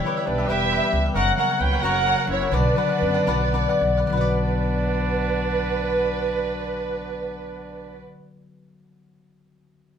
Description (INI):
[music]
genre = mexican folk, mariachi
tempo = 70-91 BPM (dotted quarters)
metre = 6/8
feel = straight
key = B minor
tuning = A4 = 440 Hz
[part]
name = dark studio violin section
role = melody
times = 0.0-8.0 s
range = B4 to G5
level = -25 LUFS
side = right 2 dB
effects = none
[part]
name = clear trumpet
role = second line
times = 0.0-8.0 s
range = D4 to B4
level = -30 LUFS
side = right 5 dB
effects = none
[part]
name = cavaquinho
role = accompaniment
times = 0.0-8.2 s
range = D4 to F#5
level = -29 LUFS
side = left 2 dB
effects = none
[part]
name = dark studio violin section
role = sustained chords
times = 0.0-8.0 s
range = G3 to D5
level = -34 LUFS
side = right 2 dB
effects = none
[part]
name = concert harp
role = arpeggios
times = 0.0-8.1 s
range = C#3 to G5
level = -26 LUFS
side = left 4 dB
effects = none
[part]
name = upright bass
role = bass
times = 0.3-8.0 s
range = E1 to F#2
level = -26 LUFS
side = right 1 dB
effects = none
[sound]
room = wet studio reverb, RT60 0.6 s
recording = minimal, uncompressed stereo recording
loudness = -20 LUFS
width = side -8 dB against mid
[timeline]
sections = 0.0-4.1 A section; 4.1-7.5 B section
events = slowing down 1.2-4.1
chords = 0.0 Em; 1.2 F#; 2.5 Bm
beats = 0.49 | 1.15 1.83 | 2.53 3.29 | 4.11 4.97 | 5.81 6.65